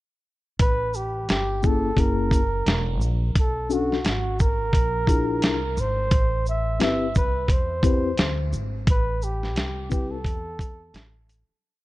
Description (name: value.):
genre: hip hop, jazz-hop.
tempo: 87 BPM.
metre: 4/4.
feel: swing 58% on 16ths.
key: unclear.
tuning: A4 = 440 Hz.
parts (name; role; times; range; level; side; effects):
breathy flugelhorn; melody; 0.6-11.1 s; F#4 to E5; -28 LUFS; right 1 dB; analog delay.
upright bass; bass; 0.6-11.5 s; E1 to E2; -28 LUFS; equal; none.
dusty soul sampler-style drum kit; drums; 0.6-11.5 s; hi-hat, kick drum, shaker, snare drum; -22 LUFS; equal; vintage 12-bit sampler grit.
mellow tine electric piano; accompaniment; 1.6-10.2 s; Bb3 to B4; -27 LUFS; left 4 dB; medium stereo tremolo.
room: little or no reverb.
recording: dark, warm production.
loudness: -21 LUFS.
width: side -18 dB against mid.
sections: 0.6-11.6 A section.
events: fade-out 8.9-11.6.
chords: 0.6 A5; 2.0 F#7; 3.4 Bm7; 4.7 Bb7#11; 6.1 Am9.